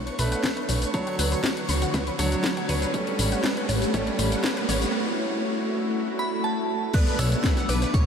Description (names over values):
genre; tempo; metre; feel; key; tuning
progressive house; 120 BPM; 4/4; straight; B minor; A4 = 440 Hz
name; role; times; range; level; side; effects
lush unison pad; sustained chords; 0.0-8.1 s; D3 to C#5; -30 LUFS; equal; chorus, phaser, sidechain pumping
bright concert grand piano; stabs; 0.0-8.1 s; F#3 to D5; -31 LUFS; right 1 dB; sidechain pumping, low-pass filter, ping-pong delay
plucky analog bass; bass; 0.0-8.1 s; A1 to D2; -26 LUFS; equal; sidechain pumping
riser and downlifter; sound effects; 0.6-8.1 s; none; -34 LUFS; right 1 dB; none
twinkling granular texture; texture; 0.0-4.9 s; C#5 to C#6; -38 LUFS; equal; built-in reverb, sidechain pumping
house drum kit; drums; 0.1-8.0 s; crash cymbal, hi-hat, shaker, snare drum; -29 LUFS; left 2 dB; overdrive, sidechain pumping on hats, small room ambience, sidechain pumping on perc, sidechain pumping on cymbals
wide unison pluck; arpeggios; 0.2-8.0 s; B4 to B5; -33 LUFS; equal; sidechain pumping, ping-pong delay
electronic kick drum; drums; 0.4-8.0 s; none; -25 LUFS; equal; overdrive, high-pass filter on kick, small room ambience
glassy synth bell; melody; 6.2-8.1 s; A5 to F#6; -30 LUFS; right 2 dB; chorus, phaser, tape echo
modern studio drum kit; drums; 6.9-8.1 s; hi-hat, snare drum; -44 LUFS; right 3 dB; none
room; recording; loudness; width
wet huge ambient reverb, RT60 7.8 s; dreamy mix soaked in reverb; -22 LUFS; side -7 dB against mid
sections
0.0-6.9 A section; 6.9-8.1 B section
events
build-up 0.0-6.9; filter sweep on synth pluck 0.0-6.9; filter sweep on analog synth pad 0.0-6.9; riser 0.6-4.9; drop 6.9-8.1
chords
0.0 Bm7; 0.9 Dmaj7; 2.9 A7; 4.9 F#m7/A; 6.9 Bm7